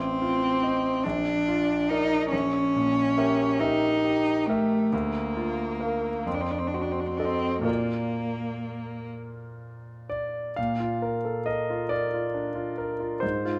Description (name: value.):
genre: classical, romantic duo for cello and grand piano.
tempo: 41-48 BPM (dotted quarters).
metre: 6/8.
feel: rubato.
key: Bb major.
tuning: A4 = 440 Hz.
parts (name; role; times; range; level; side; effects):
rich cello; melody; 0.0-9.1 s; A3 to Eb4; -28 LUFS; equal; none.
bright grand piano; accompaniment; 0.0-13.6 s; A1 to F5; -31 LUFS; equal; none.
room: wet recital hall reverb, RT60 1.7 s.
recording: none.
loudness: -27 LUFS.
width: mono.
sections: 0.0-10.6 A section; 10.6-13.6 B section.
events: none.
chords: 0.0 F7/A; 1.0 Bb; 2.3 Bbdim7; 4.9 Bb/D; 6.3 F7b9; 7.7 Bb.